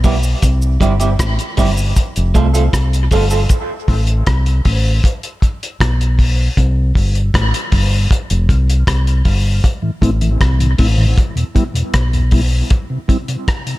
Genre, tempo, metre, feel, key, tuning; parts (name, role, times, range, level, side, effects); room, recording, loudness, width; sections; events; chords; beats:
dub reggae; 78 BPM; 4/4; straight; A minor; A4 = 436 Hz
electric guitar at the edge of break-up; accompaniment; 0.0-3.4 s; G3 to A4; -20 LUFS; right 5 dB; spring reverb, high-pass filter, dub echo
fingered electric bass; bass; 0.0-12.6 s; F1 to C2; -14 LUFS; equal
cloth-damped thuddy drum kit; drums; 0.0-13.8 s; hi-hat, kick drum, rim click; -16 LUFS; equal
cabasa; percussion; 0.0-3.7 s; -32 LUFS; right 3 dB; high-pass filter on perc
mellow tonewheel organ; accompaniment; 3.7-13.8 s; E2 to F4; -21 LUFS; equal; slow rotary speaker, high-pass filter, dub echo
small room ambience; -12 LUFS; side -18 dB against mid
0.0-13.8 A section
break 0.0-3.5, 12.7-13.8; part muted 3.5-13.8
0.4 C; 2.0 F; 3.5 Am; 5.0 E5; 6.6 C5; 8.1 F5; 9.6 Am; 11.2 E5; 12.7 N.C.
| 0.43 1.20 1.96 2.73 | 3.50 4.27 5.03 5.80 | 6.57 7.34 8.10 8.87 | 9.64 10.41 11.17 11.94 | 12.71 13.48